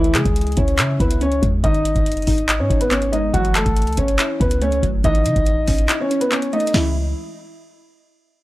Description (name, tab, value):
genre	hip hop, trap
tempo	141 BPM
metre	4/4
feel	half-time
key	C# minor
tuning	A4 = 439 Hz
part	dark grand piano	melody	0.0-6.9 s	E3 to D#5	-21 LUFS	equal	low-pass filter, analog delay
part	glassy wavetable pluck	accompaniment	0.0-6.9 s	D#3 to E5	-26 LUFS	equal	chorus, low-pass filter
part	clean 808-style bass	bass	0.0-7.1 s	F#1 to C#3	-21 LUFS	equal	none
part	booming analog drum machine	drums	0.0-6.8 s	crash cymbal, handclaps, hi-hat, kick drum, snare drum	-20 LUFS	equal	none
room	little or no reverb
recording	dry, gritty hardware recording, transformer saturation, lossy compression artefacts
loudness	-16 LUFS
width	side -17 dB against mid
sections	0.0-6.7 A section; 6.7-8.4 B section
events	kick muted 5.9-6.7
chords	0.0 C#m; 1.6 G#m; 3.3 F#m7; 5.0 Aadd9; 6.7 C#m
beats	0.36 0.79 1.21 | 1.64 2.06 2.49 2.91 | 3.34 3.77 4.19 4.62 | 5.04 5.47 5.89 6.32 | 6.74